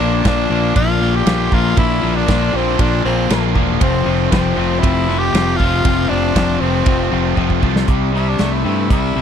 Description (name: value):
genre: classic rock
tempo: 118 BPM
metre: 4/4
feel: straight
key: unclear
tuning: A4 = 440 Hz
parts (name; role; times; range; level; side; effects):
- raspy tenor saxophone; melody; 0.0-9.2 s; C4 to G4; -21 LUFS; left 2 dB; none
- distorted electric guitar; riff; 0.0-9.2 s; F2 to F4; -22 LUFS; right 20 dB; overdrive
- overdriven electric guitar; riff; 0.0-9.2 s; F2 to Bb3; -20 LUFS; left 17 dB; none
- growling fingered electric bass; bass; 0.0-9.2 s; E1 to G2; -20 LUFS; right 1 dB; overdrive
- big rock drum kit; drums; 0.2-9.0 s; hi-hat, kick drum, ride cymbal, snare drum; -18 LUFS; right 1 dB; none
room: little or no reverb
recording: dry, close 1970s-style studio recording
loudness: -13 LUFS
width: side -8 dB against mid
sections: 0.0-7.9 A section; 7.9-9.2 B section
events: drum fill 7.4-7.9; tenor saxophone solo 7.9-9.2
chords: 0.0 Bb; 3.8 F; 7.9 C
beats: 0.25 0.76 1.27 | 1.77 2.28 2.79 3.30 | 3.81 4.32 4.83 5.34 | 5.85 6.36 6.87 7.38 | 7.89 8.39 8.90